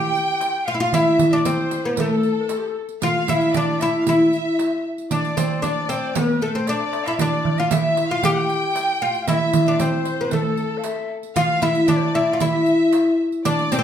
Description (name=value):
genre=Arabic maqam ensemble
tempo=115 BPM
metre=4/4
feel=straight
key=unclear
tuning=A4 = 440 Hz
part: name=oud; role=melody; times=0.0-13.8 s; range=A3 to G4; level=-20 LUFS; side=left 2 dB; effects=none
part: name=breathy bright ney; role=second line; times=0.0-13.8 s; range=G4 to G5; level=-27 LUFS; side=left 2 dB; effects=none
part: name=rich studio violin section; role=second line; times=0.0-13.8 s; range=A4 to G5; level=-27 LUFS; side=right 1 dB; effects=none
part: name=darbuka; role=percussion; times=0.1-13.7 s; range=none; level=-24 LUFS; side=right 6 dB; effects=none
part: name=riq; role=percussion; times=0.1-13.8 s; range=none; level=-31 LUFS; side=right 6 dB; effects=none
room=wet large studio reverb, RT60 0.9 s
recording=band playing live in one room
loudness=-18 LUFS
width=side -9 dB against mid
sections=0.0-13.8 A section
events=drum fill 6.7-7.2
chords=none